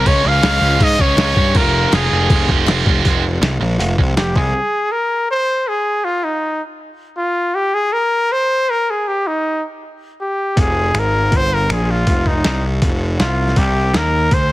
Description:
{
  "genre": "indie rock",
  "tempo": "160 BPM",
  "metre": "4/4",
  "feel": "straight",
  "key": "F minor",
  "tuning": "A4 = 440 Hz",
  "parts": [
    { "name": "clear trumpet", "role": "melody", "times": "0.0-14.5 s", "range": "Eb4 to F5", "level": "-17 LUFS", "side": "left 1 dB", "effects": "plate reverb" },
    { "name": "clean electric guitar", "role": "riff", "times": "0.0-4.5, 10.6-14.5 s", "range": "none", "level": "barely audible", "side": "none", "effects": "none" },
    { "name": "high-gain distorted guitar", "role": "riff", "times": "0.0-4.5 s", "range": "F2 to F4", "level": "-20 LUFS", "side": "right 8 dB", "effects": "distortion, lush chorus, digital delay" },
    { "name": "fuzz picked electric bass", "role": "bass", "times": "0.0-4.5, 10.6-14.5 s", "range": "F1 to Ab2", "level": "-17 LUFS", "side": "equal", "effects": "overdrive" },
    { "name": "boom bap sampler-style drum kit", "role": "drums", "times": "0.1-4.4, 10.6-14.4 s", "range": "crash cymbal, finger snaps, hi-hat, kick drum, snare drum", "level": "-17 LUFS", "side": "equal", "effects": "none" },
    { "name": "group handclap", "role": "percussion", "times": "0.4-2.8 s", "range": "none", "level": "-30 LUFS", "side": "left 18 dB", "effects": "none" }
  ],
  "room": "light reverb",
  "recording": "heavily compressed radio sound, multiband compression",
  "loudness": "-14 LUFS",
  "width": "side -16 dB against mid",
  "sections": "0.0-3.0 A section; 3.0-4.5 B section; 4.5-14.5 C section",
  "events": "none",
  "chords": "0.1 Db; 1.6 Fmadd9; 4.5 N.C.; 10.6 Fm; 13.6 Cm7"
}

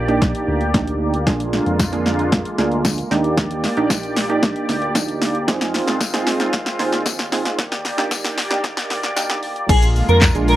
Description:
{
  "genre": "dance-pop",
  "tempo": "114 BPM",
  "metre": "4/4",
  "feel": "straight",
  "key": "Eb major",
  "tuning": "A4 = 442 Hz",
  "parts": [
    { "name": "filtered supersaw swell", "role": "sustained chords", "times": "0.0-10.6 s", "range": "Bb2 to D5", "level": "-24 LUFS", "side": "equal", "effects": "sidechain pumping" },
    { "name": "round analog bass", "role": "bass", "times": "0.0-10.6 s", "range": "Bb1 to F2", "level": "-24 LUFS", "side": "equal", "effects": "sidechain pumping" },
    { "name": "funky polysynth comp", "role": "accompaniment", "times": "0.1-10.6 s", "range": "Ab3 to Ab4", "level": "-22 LUFS", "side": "right 3 dB", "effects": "chorus, sidechain pumping" },
    { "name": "punchy analog drum machine", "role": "drums", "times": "0.1-10.6 s", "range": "crash cymbal, handclaps, hi-hat, kick drum, shaker, snare drum", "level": "-20 LUFS", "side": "equal", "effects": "none" },
    { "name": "tambourine", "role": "percussion", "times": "1.8-10.3 s", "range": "none", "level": "-29 LUFS", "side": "left 7 dB", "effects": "none" },
    { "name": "airy dreamy lead", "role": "melody", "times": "9.7-10.6 s", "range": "Ab4 to Bb4", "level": "-18 LUFS", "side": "equal", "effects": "chorus, sidechain pumping" }
  ],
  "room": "little or no reverb",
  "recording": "dry, close 1970s-style studio recording, high-pass filter",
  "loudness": "-17 LUFS",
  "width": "side -14 dB against mid",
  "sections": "0.0-9.7 A section",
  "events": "build-up 0.0-9.7; drum fill 0.0-9.7; filter sweep 0.0-9.7",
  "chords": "0.0 Ebmaj7; 1.3 Bb7; 3.1 Ebmaj7; 5.5 Fm7; 7.6 Ebmaj7; 9.7 Bb7"
}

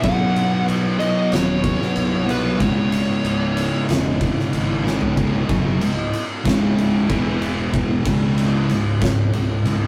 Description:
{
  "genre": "stoner and doom metal",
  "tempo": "93 BPM",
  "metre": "4/4",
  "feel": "straight",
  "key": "C# minor",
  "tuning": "A4 = 438 Hz",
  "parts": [
    { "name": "fuzz lead guitar", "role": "melody", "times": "0.0-3.8 s", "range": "B4 to F#5", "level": "-28 LUFS", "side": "equal", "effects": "distortion" },
    { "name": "analog drone", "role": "sustained chords", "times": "0.8-9.9 s", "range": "C#3 to C#5", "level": "-37 LUFS", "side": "equal", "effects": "none" },
    { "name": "thick fuzz guitar", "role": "riff", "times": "0.0-9.9 s", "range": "C#2 to B3", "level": "-23 LUFS", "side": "equal", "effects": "distortion" },
    { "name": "thick fuzz guitar", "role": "riff", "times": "0.0-9.9 s", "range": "C#2 to B3", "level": "-28 LUFS", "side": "equal", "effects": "distortion" },
    { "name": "fuzz fingered electric bass", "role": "bass", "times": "0.0-9.9 s", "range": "C#1 to B#1", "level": "-31 LUFS", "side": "equal", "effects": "overdrive, tube saturation" },
    { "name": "oversized low-tuned drum kit", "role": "drums", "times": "0.0-9.8 s", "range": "kick drum, ride cymbal, snare drum, toms", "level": "-25 LUFS", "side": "equal", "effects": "none" }
  ],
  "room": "moderate stone room reverb, RT60 1.1 s",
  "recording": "rough rehearsal-room recording, warm saturation",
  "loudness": "-20 LUFS",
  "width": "mono",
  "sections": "0.0-5.2 A section; 5.2-9.9 B section",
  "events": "drum fill 4.8-5.2",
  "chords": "0.0 B; 2.6 C#m; 5.2 C#5; 7.1 E5; 8.1 C#5"
}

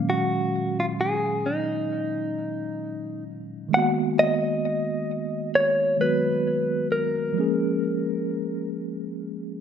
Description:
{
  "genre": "R&B",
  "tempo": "66 BPM",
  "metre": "4/4",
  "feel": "swing 54% on 16ths",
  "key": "unclear",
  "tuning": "A4 = 440 Hz",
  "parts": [
    { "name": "direct-recorded clean electric guitar", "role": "melody", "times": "0.0-8.7 s", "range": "Bb3 to Gb5", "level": "-24 LUFS", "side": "equal", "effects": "spring reverb, ping-pong delay" },
    { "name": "mellow tine electric piano", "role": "accompaniment", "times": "0.0-9.6 s", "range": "Bb2 to F5", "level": "-26 LUFS", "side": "equal", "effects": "medium stereo tremolo" }
  ],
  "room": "light reverb, digital ambience",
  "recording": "rough home demo mix",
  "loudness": "-23 LUFS",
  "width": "side -8 dB against mid",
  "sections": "0.0-3.7 A section; 3.7-9.6 B section",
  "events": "none",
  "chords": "0.0 Ebm11/Bb; 3.7 Abm9; 7.4 Bbm7"
}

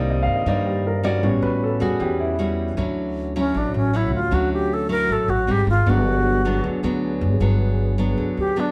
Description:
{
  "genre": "bossa nova",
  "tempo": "156 BPM",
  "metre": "4/4",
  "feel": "straight",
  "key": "D major",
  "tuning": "A4 = 440 Hz",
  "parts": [
    { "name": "nylon-string guitar", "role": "accompaniment", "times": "0.0-8.7 s", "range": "G2 to Gb4", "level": "-27 LUFS", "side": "equal", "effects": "none" },
    { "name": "warm grand piano", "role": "accompaniment", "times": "0.0-2.8 s", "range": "Eb3 to F5", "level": "-25 LUFS", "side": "equal", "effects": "none" },
    { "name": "dark French horn section", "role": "sustained chords", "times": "0.0-8.7 s", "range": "B#2 to C5", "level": "-36 LUFS", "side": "equal", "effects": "none" },
    { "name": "upright bass", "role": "bass", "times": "0.0-8.7 s", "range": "G1 to G2", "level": "-25 LUFS", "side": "equal", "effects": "none" },
    { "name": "bright reedy alto flute", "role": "melody", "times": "3.4-8.7 s", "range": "C#4 to Bb4", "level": "-24 LUFS", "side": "equal", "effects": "none" }
  ],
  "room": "moderate studio ambience, RT60 0.5 s",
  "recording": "heard from further back in the room",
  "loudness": "-21 LUFS",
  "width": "mono",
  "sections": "0.0-2.8 A section; 2.8-8.7 A section",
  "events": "grand piano solo 0.0-2.8; alto flute solo 2.8-8.7",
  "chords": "0.0 Cm7; 1.2 A13; 2.8 Dmaj9; 5.5 G#maj7; 5.9 Gmaj7"
}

